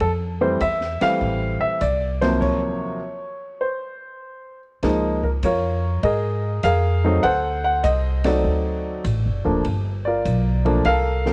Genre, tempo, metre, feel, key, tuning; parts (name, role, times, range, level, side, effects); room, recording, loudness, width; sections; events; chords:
jazz piano trio; 100 BPM; 4/4; swing 67% on 8ths; A4 = 439 Hz
warm upright piano; melody; 0.0-11.3 s; Eb2 to F#5; -24 LUFS; equal
upright bass; bass; 0.0-11.3 s; D1 to Ab2; -25 LUFS; equal
open jazz drum kit; drums; 0.0-11.3 s; crash cymbal, hi-hat, kick drum, ride cymbal, snare drum; -37 LUFS; equal
light reverb, small room ambience; -21 LUFS; mono
0.0-4.8 A section; 4.8-11.3 B section
stop 2.4-4.8
0.0 Fmaj9; 2.4 Ebm7; 3.6 N.C.; 4.8 Db69; 7.2 D7b9; 9.7 Gm9